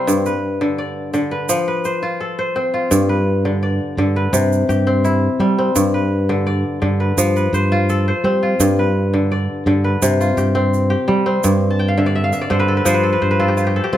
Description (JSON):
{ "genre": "west african traditional, West African string and xylophone music", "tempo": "84 BPM", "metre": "4/4", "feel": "straight", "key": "G mixolydian", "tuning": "A4 = 438 Hz", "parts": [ { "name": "kora", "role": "arpeggios", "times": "0.0-14.0 s", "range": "G2 to A5", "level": "-17 LUFS", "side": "left 1 dB", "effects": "none" }, { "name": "tube shaker", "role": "percussion", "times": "0.1-13.7 s", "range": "none", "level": "-25 LUFS", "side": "right 10 dB", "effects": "none" }, { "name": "fingered electric bass", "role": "bass", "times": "2.9-14.0 s", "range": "G2 to G3", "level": "-18 LUFS", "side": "right 1 dB", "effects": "none" } ], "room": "light reverb", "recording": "none", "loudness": "-15 LUFS", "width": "side -12 dB against mid", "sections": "0.0-14.0 A section", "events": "kora fill 11.7-14.0", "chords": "0.1 G; 1.5 F; 2.9 G; 4.3 C/G; 7.2 F/G; 10.0 C5/G; 11.4 G5; 12.9 F5/G", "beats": "| 0.08 0.79 1.50 2.21 | 2.92 3.63 4.34 5.05 | 5.76 6.47 7.18 7.89 | 8.60 9.31 10.02 10.73 | 11.44 12.15 12.86 13.57" }